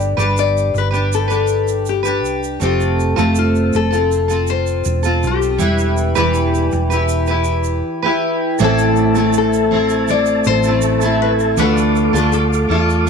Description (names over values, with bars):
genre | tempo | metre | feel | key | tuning
acoustic pop | 80 BPM | 4/4 | straight | A minor | A4 = 440 Hz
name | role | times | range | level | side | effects
nylon-string guitar | melody | 0.0-13.1 s | F4 to D5 | -20 LUFS | left 10 dB | none
picked steel-string acoustic guitar | accompaniment | 0.0-13.1 s | A2 to B4 | -17 LUFS | right 1 dB | double-tracked left and right
hollow-body short-scale fingered electric bass | bass | 0.0-13.1 s | E1 to E2 | -19 LUFS | right 2 dB | none
tube shaker | percussion | 0.0-13.1 s | none | -32 LUFS | right 19 dB | none
mellow tonewheel organ | sustained chords | 8.6-13.1 s | A4 to D6 | -24 LUFS | right 2 dB | chorus vibrato, fast rotary speaker
room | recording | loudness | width
light reverb, studio reverb | 1960s-style stereo with parts hard left and right | -14 LUFS | side -6 dB against mid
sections
0.0-8.6 A section; 8.6-13.1 B section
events
none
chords
0.0 G; 2.6 F; 5.6 Em; 8.6 Am; 11.6 Dm